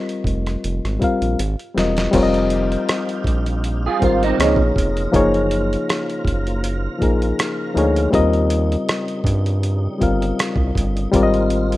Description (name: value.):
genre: R&B, neo-soul.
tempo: 80 BPM.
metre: 4/4.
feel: swing 53% on 16ths.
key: Ab major.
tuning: A4 = 440 Hz.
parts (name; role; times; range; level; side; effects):
reed electric piano; accompaniment; 0.0-11.8 s; Eb3 to F5; -19 LUFS; left 2 dB; none.
boom bap sampler-style drum kit; drums; 0.1-11.8 s; crash cymbal, hi-hat, kick drum, rim click, snare drum; -23 LUFS; right 1 dB; none.
round analog bass; bass; 0.3-11.8 s; Fb1 to G2; -20 LUFS; right 1 dB; none.
tonewheel organ; sustained chords; 2.1-11.8 s; Cb3 to Bb4; -30 LUFS; right 2 dB; slow rotary speaker, overdrive, chorus vibrato.
electric guitar through a small old amp; second line; 3.9-4.6 s; C4 to Ab4; -20 LUFS; right 7 dB; ensemble chorus.
room: little or no reverb.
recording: rough home demo mix.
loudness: -16 LUFS.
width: side -16 dB against mid.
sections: 0.0-2.1 A section; 2.1-11.8 A section.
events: drum fill 1.4-2.1.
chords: 0.0 Ab69 (rootless); 1.4 Abmaj7; 2.1 Fm9; 4.4 Db13; 5.1 Gbmaj7; 8.1 Eb13; 11.1 Ab69.